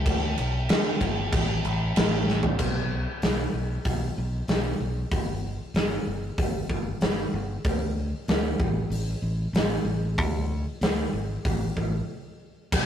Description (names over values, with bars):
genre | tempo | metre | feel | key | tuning
quiet-loud alternative rock | 95 BPM | 4/4 | straight | unclear | A4 = 440 Hz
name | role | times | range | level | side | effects
fingered electric bass | bass | 0.0-12.9 s | G1 to D3 | -28 LUFS | equal | none
big rock drum kit | drums | 0.1-12.9 s | crash cymbal, hi-hat, kick drum, snare drum, toms | -26 LUFS | equal | none
room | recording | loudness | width
light reverb | rough rehearsal-room recording, tube saturation | -24 LUFS | side -9 dB against mid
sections
0.0-2.6 A section; 2.6-12.7 B section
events
drum fill 2.3-2.6; break 12.1-12.7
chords
none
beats
| 0.05 0.68 1.31 1.95 | 2.58 3.22 3.85 4.48 | 5.12 5.75 6.39 7.02 | 7.65 8.29 8.92 9.55 | 10.19 10.82 11.45 12.08 | 12.72